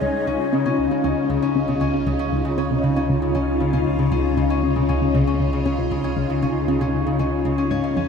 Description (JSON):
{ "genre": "ambient, sequencer-driven space music", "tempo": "117 BPM", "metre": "4/4", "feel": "straight", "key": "Db major", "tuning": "A4 = 441 Hz", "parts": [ { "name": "breathy mellow concert flute", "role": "melody", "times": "0.0-0.8 s", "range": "Db5", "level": "-31 LUFS", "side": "left 3 dB", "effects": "tape echo" }, { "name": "phased string machine", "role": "sustained chords", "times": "0.0-8.1 s", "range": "Db3 to Ab4", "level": "-24 LUFS", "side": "equal", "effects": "ensemble chorus, phaser" }, { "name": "tight sequenced synth", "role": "riff", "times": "0.0-8.1 s", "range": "Db2 to Db3", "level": "-24 LUFS", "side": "equal", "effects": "chorus, phaser, vintage 12-bit sampler grit, tape echo" }, { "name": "round analog bass", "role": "bass", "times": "0.0-8.1 s", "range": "Db2", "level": "-28 LUFS", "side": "right 1 dB", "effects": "none" }, { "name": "concert harp", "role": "arpeggios", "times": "0.3-8.1 s", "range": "Db3 to Db5", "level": "-23 LUFS", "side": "moving between left 8 dB and equal", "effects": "auto-pan, tape echo" } ], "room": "wet huge ambient reverb, RT60 8.6 s", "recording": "dreamy mix soaked in reverb", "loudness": "-18 LUFS", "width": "side -6 dB against mid", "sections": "0.0-8.1 A section", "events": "none", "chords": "0.0 Dbadd9" }